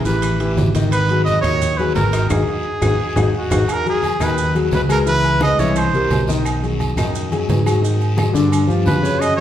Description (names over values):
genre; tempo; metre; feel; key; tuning
latin, salsa; 174 BPM; 4/4; straight; G# minor; A4 = 440 Hz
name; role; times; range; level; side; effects
warm grand piano; accompaniment; 0.0-9.4 s; C#3 to E5; -20 LUFS; left 3 dB; none
clear trumpet; melody; 0.1-6.3, 8.9-9.4 s; F#4 to D#5; -20 LUFS; right 2 dB; none
fingered electric bass; bass; 0.1-9.4 s; G#1 to G#2; -20 LUFS; equal; none
congas; percussion; 0.1-9.4 s; none; -25 LUFS; equal; none
guiro; percussion; 0.1-9.4 s; none; -35 LUFS; left 3 dB; none
maracas; percussion; 0.1-9.4 s; none; -36 LUFS; right 6 dB; none
claves; percussion; 0.2-9.4 s; none; -36 LUFS; left 1 dB; none
timbales and agogo bells; percussion; 0.2-9.4 s; none; -28 LUFS; right 4 dB; none
room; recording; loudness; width
wet large studio reverb, RT60 1.2 s; heard from further back in the room; -15 LUFS; side -11 dB against mid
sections
0.0-3.7 A section; 3.7-9.4 B section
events
band accent 2.3-3.7; drum fill 2.7-3.7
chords
0.2 Asus2; 0.9 G#7(no3); 3.7 G#m7; 5.1 C#m7; 5.8 C7; 6.5 B6; 7.8 G#5; 8.5 G7#11